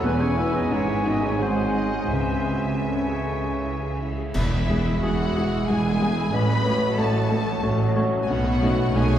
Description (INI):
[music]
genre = classical, romantic movement for piano and orchestra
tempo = 78-93 BPM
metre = 3/4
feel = rubato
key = C# minor, E major from 4.4 s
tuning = A4 = 440 Hz
[part]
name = rich studio violin section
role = melody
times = 0.0-9.2 s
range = E5 to B5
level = -33 LUFS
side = left 2 dB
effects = none
[part]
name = warm baby grand piano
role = melody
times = 0.0-9.2 s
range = A1 to C#5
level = -25 LUFS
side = equal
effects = none
[part]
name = bright concert flute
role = second line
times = 0.0-4.0 s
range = G#5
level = -32 LUFS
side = left 1 dB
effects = none
[part]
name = rich studio violin section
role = second line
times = 0.0-9.2 s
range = E4 to E5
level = -32 LUFS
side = left 2 dB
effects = none
[part]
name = warm oboe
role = second line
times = 0.0-4.0 s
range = B4 to E5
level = -33 LUFS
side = left 1 dB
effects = none
[part]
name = mellow bassoon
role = accompaniment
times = 0.0-4.0 s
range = E3 to F#3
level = -36 LUFS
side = right 2 dB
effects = none
[part]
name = rich studio viola section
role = accompaniment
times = 0.0-9.2 s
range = E3 to E4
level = -32 LUFS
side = right 1 dB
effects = none
[part]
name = mellow French horn section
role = sustained chords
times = 0.0-4.0 s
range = B3 to E4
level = -29 LUFS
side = left 1 dB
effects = none
[part]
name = dark studio cello section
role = bass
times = 0.0-9.2 s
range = E2 to C#3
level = -30 LUFS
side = right 1 dB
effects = none
[part]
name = warm studio double bass section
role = bass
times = 0.0-9.2 s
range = E1 to C#2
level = -28 LUFS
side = right 2 dB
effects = none
[part]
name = cymbal swell, clash cymbals and concert bass drum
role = percussion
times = 0.0-5.6 s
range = none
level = -32 LUFS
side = equal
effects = none
[part]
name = timpani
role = percussion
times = 4.3-5.3 s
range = E2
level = -35 LUFS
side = left 1 dB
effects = none
[sound]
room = wet concert hall reverb, RT60 2.5 s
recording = heard from further back in the room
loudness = -20 LUFS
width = side -10 dB against mid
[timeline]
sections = 0.0-4.4 A section; 4.4-9.2 B section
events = band accent 4.4-5.0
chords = 0.0 E; 0.7 C#m/G#; 1.4 G#7; 2.1 C#m; 4.4 E; 6.3 F#m/A; 8.3 B9